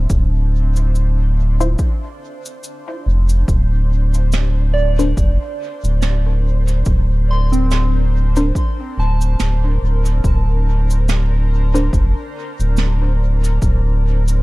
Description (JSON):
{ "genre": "ambient dub", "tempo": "71 BPM", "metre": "4/4", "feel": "swing 56% on 16ths", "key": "unclear", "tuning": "A4 = 436 Hz", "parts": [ { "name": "granular cloud pad", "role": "sustained chords", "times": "0.0-14.4 s", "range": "D4 to F5", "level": "-31 LUFS", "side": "equal", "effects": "built-in reverb" }, { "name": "soft synth bell", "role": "arpeggios", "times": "0.0-14.4 s", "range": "C4 to C6", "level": "-27 LUFS", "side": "right 2 dB", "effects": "chorus, phaser, dub echo" }, { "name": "warm sub bass", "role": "bass", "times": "0.0-14.4 s", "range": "D1 to F1", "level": "-15 LUFS", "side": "equal", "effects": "tube saturation" }, { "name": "cabasa and snare drum", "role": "drums", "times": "0.1-14.4 s", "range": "none", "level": "-27 LUFS", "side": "right 3 dB", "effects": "dub echo" }, { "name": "electronic kick drum", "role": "drums", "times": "0.1-13.8 s", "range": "none", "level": "-18 LUFS", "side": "equal", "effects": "none" }, { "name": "filtered dub chord stab", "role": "stabs", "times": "1.6-12.0 s", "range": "D4 to C5", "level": "-24 LUFS", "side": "left 2 dB", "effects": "phaser, dub echo" } ], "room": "small room reverb", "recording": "dark, warm production", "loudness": "-14 LUFS", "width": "side -21 dB against mid", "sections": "0.0-14.4 A section", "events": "fade-in on ambient pad 0.0-14.4", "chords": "0.0 Dm9; 3.5 Bbadd9/D" }